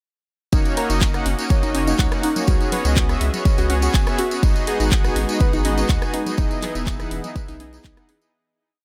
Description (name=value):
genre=progressive house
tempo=123 BPM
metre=4/4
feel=straight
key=F# mixolydian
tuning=A4 = 438 Hz
part: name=soft round pluck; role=arpeggios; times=0.5-8.1 s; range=D#4 to G#5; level=-30 LUFS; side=equal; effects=chorus, sidechain pumping, digital delay
part: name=soft supersaw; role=stabs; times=0.5-8.3 s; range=A#3 to G#5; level=-27 LUFS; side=equal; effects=sidechain pumping, digital delay
part: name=round analog bass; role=bass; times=0.5-7.9 s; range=E1 to D#2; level=-26 LUFS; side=equal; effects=sidechain pumping
part: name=electronic kick drum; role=drums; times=0.5-7.9 s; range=none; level=-22 LUFS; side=equal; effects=none
part: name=pop drum kit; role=drums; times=0.5-8.3 s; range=handclaps, hi-hat, rim click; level=-31 LUFS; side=equal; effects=none
part: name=tambourine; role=percussion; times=0.5-8.3 s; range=none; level=-36 LUFS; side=equal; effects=none
part: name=congas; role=percussion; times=1.3-8.2 s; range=none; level=-34 LUFS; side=equal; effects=overdrive, sidechain pumping on perc
part: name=warm analog pad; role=sustained chords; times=4.4-8.3 s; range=E3 to B4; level=-32 LUFS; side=equal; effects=chorus, sidechain pumping
room=digital ambience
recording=none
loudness=-20 LUFS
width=mono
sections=0.5-8.3 drop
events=drop 0.5-8.3; fade-out 5.7-8.3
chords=0.5 F#6; 2.5 C#7sus4; 4.4 G#m7; 6.4 Emaj7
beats=| 0.53 1.01 1.50 1.99 | 2.48 2.97 3.45 3.94 | 4.43 4.92 5.41 5.89 | 6.38 6.87 7.36 7.84